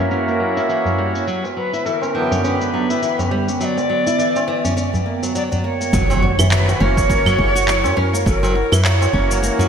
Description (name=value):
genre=organic downtempo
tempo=103 BPM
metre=4/4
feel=swing 58% on 16ths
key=F# phrygian dominant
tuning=A4 = 441 Hz
part: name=Native American-style cedar flute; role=melody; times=0.0-9.4 s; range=A#4 to E5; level=-22 LUFS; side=equal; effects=ping-pong delay
part: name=hand-pumped harmonium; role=accompaniment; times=0.0-2.9, 6.8-9.7 s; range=F#2 to G5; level=-23 LUFS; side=right 2 dB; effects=sidechain pumping, digital delay
part: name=warbly tape-like pad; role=sustained chords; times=0.0-9.7 s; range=D3 to D6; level=-25 LUFS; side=right 2 dB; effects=chorus, built-in reverb, phaser, sidechain pumping
part: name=flamenco guitar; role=arpeggios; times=0.0-9.7 s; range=C#3 to F#4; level=-23 LUFS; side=left 2 dB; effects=digital delay
part: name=electronic shaker, claves and handclaps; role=drums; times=0.1-9.7 s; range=none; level=-25 LUFS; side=right 1 dB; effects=low-pass filter on perc, low-pass filter on snare, low-pass filter on room
part: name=tabla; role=percussion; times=0.6-9.7 s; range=none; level=-24 LUFS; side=right 1 dB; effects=none
part: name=woody FM bass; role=bass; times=5.9-9.5 s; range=F#1 to F#2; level=-18 LUFS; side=equal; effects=sidechain pumping
part: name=electronic kick drum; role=drums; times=5.9-9.3 s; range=none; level=-21 LUFS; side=equal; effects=overdrive
part: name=impact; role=sound effects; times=5.9-8.3 s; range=none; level=-26 LUFS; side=right 1 dB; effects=none
room=moderate lush hall reverb, RT60 2.5 s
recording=bright 1980s-style digital production, low-pass filter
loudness=-15 LUFS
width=side -7 dB against mid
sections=0.0-5.9 A section; 5.9-9.7 B section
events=filter sweep 0.0-5.9; impact 5.9-8.3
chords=0.0 F#7b9; 1.3 G/F#; 5.9 F#7